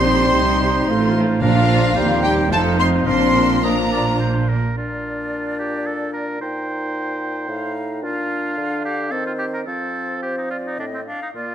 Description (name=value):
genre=quick classical-period movement for symphony orchestra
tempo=109 BPM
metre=3/4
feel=straight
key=Bb major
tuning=A4 = 440 Hz
part: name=rich chamber violin section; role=melody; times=0.0-4.2 s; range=F5 to C6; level=-23 LUFS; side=left 1 dB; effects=none
part: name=bright concert flute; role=second line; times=0.0-11.5 s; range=C5 to C6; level=-27 LUFS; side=left 1 dB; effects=none
part: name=clear clarinet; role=second line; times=0.0-11.5 s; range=Bb3 to Eb4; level=-28 LUFS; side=left 2 dB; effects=none
part: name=clear oboe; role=second line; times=0.0-11.5 s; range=C4 to Eb5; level=-27 LUFS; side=right 2 dB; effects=none
part: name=rich studio violin section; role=second line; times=0.0-4.2 s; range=F4 to C5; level=-28 LUFS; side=left 3 dB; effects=none
part: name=mellow bassoon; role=accompaniment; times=0.0-11.5 s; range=A2 to G3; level=-27 LUFS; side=right 1 dB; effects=none
part: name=rich studio viola section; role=accompaniment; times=0.0-4.5 s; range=C4 to A4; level=-27 LUFS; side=left 1 dB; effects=none
part: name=mellow French horn section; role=sustained chords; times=0.0-4.2 s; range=F3 to C4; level=-22 LUFS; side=left 3 dB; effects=none
part: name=rich chamber double bass section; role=bass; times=0.0-4.5 s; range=F1 to Eb2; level=-23 LUFS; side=right 4 dB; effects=none
part: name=rich studio cello section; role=bass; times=0.0-4.5 s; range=Eb2 to C3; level=-22 LUFS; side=right 3 dB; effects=none
part: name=timpani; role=percussion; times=0.0-3.9 s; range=Bb2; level=-28 LUFS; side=equal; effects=none
room=light reverb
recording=close, detailed microphones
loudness=-17 LUFS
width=side -9 dB against mid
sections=0.0-4.8 A section; 4.8-11.5 A section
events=none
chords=0.0 Cm7/Bb; 0.9 F7/A; 1.4 Bb; 2.0 Cm/Eb; 2.5 F7; 3.1 Bb; 7.5 F7/A; 8.0 Bb; 9.1 Cm/Eb; 9.7 F